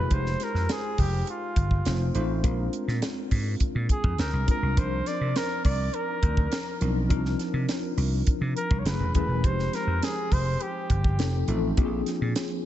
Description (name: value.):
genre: polished 1980s jazz-funk pop.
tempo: 103 BPM.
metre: 4/4.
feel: straight.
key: C minor.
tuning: A4 = 441 Hz.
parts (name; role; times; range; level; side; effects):
clear flugelhorn; melody; 0.0-11.5 s; F4 to D5; -32 LUFS; equal; tape echo.
tine electric piano; accompaniment; 0.0-12.7 s; F3 to C#5; -31 LUFS; left 2 dB; overdrive, medium stereo tremolo, lush chorus.
vintage slap bass; bass; 0.0-12.3 s; Eb1 to C3; -26 LUFS; equal; none.
tight funk drum kit; drums; 0.1-12.5 s; hi-hat, kick drum, snare drum; -27 LUFS; equal; none.
room: light reverb, studio reverb.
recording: nothing above 8.0 kHz.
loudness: -24 LUFS.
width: side -12 dB against mid.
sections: 0.0-12.7 A section.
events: none.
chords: 0.1 Fm9; 1.9 F7; 2.4 Bb9; 4.8 Cm11; 8.9 F#m9; 9.4 Fm9; 11.2 F7; 11.8 Bb9.